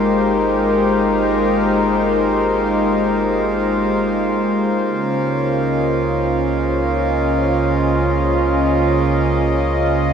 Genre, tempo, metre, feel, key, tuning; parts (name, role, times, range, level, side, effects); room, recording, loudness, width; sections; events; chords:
ambient; free time; A4 = 439 Hz
warm analog pad; sustained chords; 0.0-10.1 s; Db3 to Eb5; -16 LUFS; left 1 dB; chorus
round analog bass; bass; 0.0-10.1 s; Ab1 to Db2; -26 LUFS; right 1 dB
hand-pumped harmonium; drone; 0.0-10.1 s; Bb3 to F4; -23 LUFS; right 3 dB
wet plate reverb, RT60 2.9 s; dreamy mix soaked in reverb, nothing above 10.7 kHz; -15 LUFS; side -7 dB against mid
0.0-10.1 A section
0.0 Abmaj7; 4.9 Dbmaj7